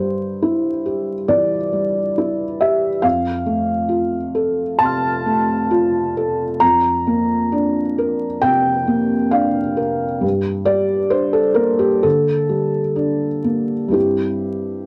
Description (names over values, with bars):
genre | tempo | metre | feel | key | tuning
neoclassical minimalist piano | 66 BPM | 4/4 | uneven beats, rubato | F major | A4 = 440 Hz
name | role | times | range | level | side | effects
felt-muted upright piano | solo | 0.0-14.9 s | F2 to F6 | -18 LUFS | equal | cassette tape
room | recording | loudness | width
moderate booth ambience, RT60 0.2 s | home recording on cassette, vinyl crackle | -18 LUFS | mono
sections
0.0-14.9 A section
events
none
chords
0.0 C/G; 3.0 F; 6.6 Bbadd9/F; 10.2 Gm; 13.9 C/G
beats
0.42 1.29 2.17 | 3.04 3.90 4.80 5.71 | 6.62 7.53 8.43 9.33 | 10.23 11.13 12.04 12.97 | 13.94